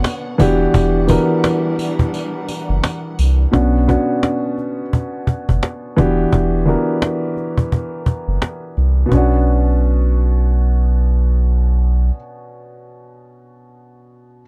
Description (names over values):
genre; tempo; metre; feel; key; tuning
hip hop, boom-bap hip-hop; 86 BPM; 4/4; swing 57% on 16ths; B harmonic minor; A4 = 440 Hz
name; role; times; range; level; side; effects
warm upright piano; accompaniment; 0.0-14.4 s; B2 to A#4; -21 LUFS; equal; cassette tape, high-pass filter, low-pass filter
warm studio string section; sustained chords; 0.0-3.5 s; D3 to F#5; -30 LUFS; equal; high-pass filter, low-pass filter
cajon; drums; 0.0-9.3 s; none; -20 LUFS; equal; none
sleigh bells; percussion; 0.0-3.4 s; none; -37 LUFS; equal; none
soft dub sub bass; bass; 0.4-12.1 s; E1 to C2; -17 LUFS; equal; none
room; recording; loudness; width
little or no reverb; dark, warm production; -17 LUFS; mono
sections
0.0-3.5 A section; 3.5-9.1 B section; 9.1-11.9 C section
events
break 2.1-3.5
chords
0.4 Em9; 3.5 Bmadd9; 6.0 Em9; 9.1 Bmadd9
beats
0.04 | 0.74 1.44 2.14 2.84 | 3.53 4.23 4.93 5.63 | 6.32 7.02 7.72 8.42 | 9.12 9.81 10.51 11.21